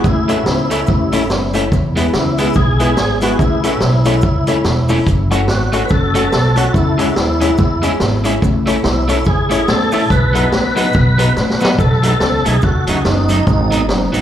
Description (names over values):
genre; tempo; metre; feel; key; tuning
ska; 143 BPM; 4/4; swing 59% on 8ths; B mixolydian; A4 = 440 Hz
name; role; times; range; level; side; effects
tonewheel organ; melody; 0.0-13.9 s; D#4 to B4; -19 LUFS; right 1 dB; overdrive, chorus vibrato, slow rotary speaker, tape echo, slapback echo
upright bass; bass; 0.0-14.2 s; E1 to E2; -17 LUFS; equal; none
street-band drum kit; drums; 0.0-14.2 s; hi-hat, kick drum, snare drum; -17 LUFS; equal; tape echo
cabasa; percussion; 0.0-14.2 s; none; -39 LUFS; right 2 dB; none
electric guitar at the edge of break-up; accompaniment; 0.3-14.2 s; F#3 to F#4; -21 LUFS; right 2 dB; tape echo, slapback echo
warm upright piano; stabs; 0.3-11.7 s; D#4 to C#5; -22 LUFS; left 4 dB; tape echo, slapback echo
room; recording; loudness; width
light reverb, small room ambience; live gig heard through the venue's PA, club reverb; -12 LUFS; side -10 dB against mid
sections
0.0-11.8 A section; 11.8-14.2 B section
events
drum fill 11.4-11.8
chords
0.0 A; 1.7 E; 3.4 A; 5.1 F#m; 6.7 C#m; 8.4 A; 10.1 B; 11.8 B7; 13.5 G#m7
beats
| 0.04 0.46 0.88 1.30 | 1.72 2.14 2.56 2.97 | 3.39 3.81 4.23 4.65 | 5.07 5.48 5.90 6.32 | 6.74 7.16 7.58 8.00 | 8.42 8.84 9.26 9.68 | 10.10 10.53 10.95 11.37 | 11.79 12.21 12.63 13.05 | 13.47 13.89